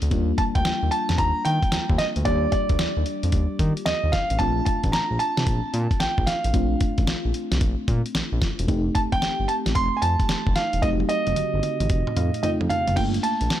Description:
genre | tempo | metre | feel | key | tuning
R&B, new jack swing | 112 BPM | 4/4 | swing 65% on 16ths | Bb major | A4 = 438 Hz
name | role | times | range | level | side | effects
FM electric piano with soft pad layer | accompaniment | 0.0-13.6 s | G3 to A5 | -29 LUFS | left 1 dB | chorus
smooth synth bass | bass | 0.0-13.5 s | E1 to Eb3 | -25 LUFS | equal | none
dusty soul sampler-style drum kit | drums | 0.0-13.6 s | crash cymbal, hi-hat, kick drum, snare drum, toms | -25 LUFS | equal | none
warm concert grand piano | melody | 0.4-13.6 s | D5 to C6 | -25 LUFS | right 2 dB | none
room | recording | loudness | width
little or no reverb | none | -20 LUFS | side -12 dB against mid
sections
0.0-13.0 A section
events
drum fill 10.8-13.0; FM electric piano fill 11.9-13.0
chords
0.1 Ebmaj7; 4.4 Bbmaj7; 8.7 F7; 13.0 Gm7

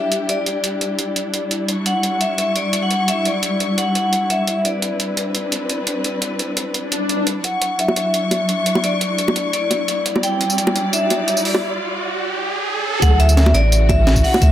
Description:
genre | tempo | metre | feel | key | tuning
liquid drum and bass | 172 BPM | 4/4 | straight | D major | A4 = 440 Hz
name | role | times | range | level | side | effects
vibraphone with hard mallets | melody | 0.0-14.5 s | D5 to G5 | -21 LUFS | left 1 dB | low-pass filter, dub echo
dark studio string section | sustained chords | 0.0-14.5 s | C#3 to C#6 | -22 LUFS | left 1 dB | sidechain pumping
breakbeat sampler-style drum kit | drums | 0.1-14.5 s | hi-hat, snare drum, tambourine | -22 LUFS | right 1 dB | high-pass filter on perc, high-pass filter on hats, high-pass filter on snare, high-pass filter on room
swell and riser | sound effects | 6.8-13.0 s | none | -24 LUFS | right 1 dB | none
bongos | percussion | 7.9-14.4 s | none | -20 LUFS | right 1 dB | none
warm sub bass | bass | 13.0-14.5 s | A1 to D2 | -13 LUFS | equal | none
electronic kick drum | drums | 13.0-14.5 s | none | -17 LUFS | equal | none
room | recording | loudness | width
light reverb | high-pass filter | -16 LUFS | side -11 dB against mid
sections
0.0-7.4 A section; 7.4-13.0 B section; 13.0-14.5 C section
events
swell 6.8-7.4; build-up 7.4-13.0; riser 7.4-13.0; filter sweep on vibraphone 7.4-13.0; break 11.6-13.0; drop 13.0-14.5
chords
0.0 Em7; 1.7 Dmaj9; 4.7 Cmaj9; 7.4 Dmaj9; 10.1 Em9; 12.8 Dmaj9

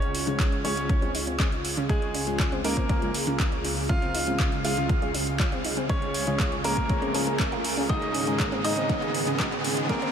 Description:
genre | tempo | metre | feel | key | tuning
progressive house | 120 BPM | 4/4 | straight | Db major | A4 = 440 Hz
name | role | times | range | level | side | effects
clear baby grand piano | melody | 0.0-10.1 s | Ab3 to F5 | -30 LUFS | equal | tape echo
warm analog pad | sustained chords | 0.0-10.1 s | Db2 to Ab4 | -32 LUFS | right 1 dB | chorus, sidechain pumping
deep house drum kit | drums | 0.0-10.1 s | handclaps, hi-hat | -31 LUFS | equal | overdrive
riser | sound effects | 3.6-10.1 s | none | -36 LUFS | right 1 dB | none
analog pluck | arpeggios | 0.3-10.1 s | Db3 to Db5 | -33 LUFS | equal | chorus, sidechain pumping, tape echo
chorused polysynth | stabs | 0.3-10.0 s | Ab3 to Db5 | -34 LUFS | left 1 dB | sidechain pumping, tape echo
electronic kick drum | drums | 0.4-10.0 s | none | -26 LUFS | equal | overdrive
room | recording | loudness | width
moderate huge ambient reverb, RT60 8.6 s | dreamy mix soaked in reverb, high-pass filter | -23 LUFS | side -8 dB against mid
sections
0.0-10.1 A section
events
build-up 0.0-10.1; riser 3.6-10.1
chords
0.0 Db; 7.9 Absus4

